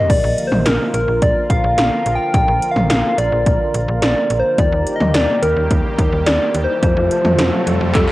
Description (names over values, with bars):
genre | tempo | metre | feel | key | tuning
synth-pop | 107 BPM | 4/4 | straight | Bb major | A4 = 440 Hz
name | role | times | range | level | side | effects
soft struck synth lead | melody | 0.0-8.1 s | A4 to G5 | -18 LUFS | left 1 dB | chorus, cassette tape, tape echo
sweeping resonant pad | sustained chords | 0.0-8.1 s | C3 to Bb4 | -23 LUFS | equal | chorus, cassette tape
slap-like FM bass | bass | 0.1-8.1 s | Bb1 to F2 | -20 LUFS | equal | none
80s electronic pad drums | drums | 0.1-8.1 s | crash cymbal, handclaps, hi-hat, kick drum, snare drum, toms | -18 LUFS | equal | gated reverb on snare and toms, overdrive, cassette tape
riser | sound effects | 5.7-8.1 s | none | -25 LUFS | right 1 dB | none
room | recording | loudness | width
moderate spring reverb, RT60 2.6 s | home recording on cassette | -14 LUFS | side -17 dB against mid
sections
0.0-8.1 A section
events
riser 5.7-8.1; drum fill 7.9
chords
0.1 Bb; 4.6 Eb; 6.8 F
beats
| 0.10 0.66 1.22 1.78 | 2.34 2.90 3.46 4.02 | 4.58 5.14 5.71 6.27 | 6.83 7.39 7.95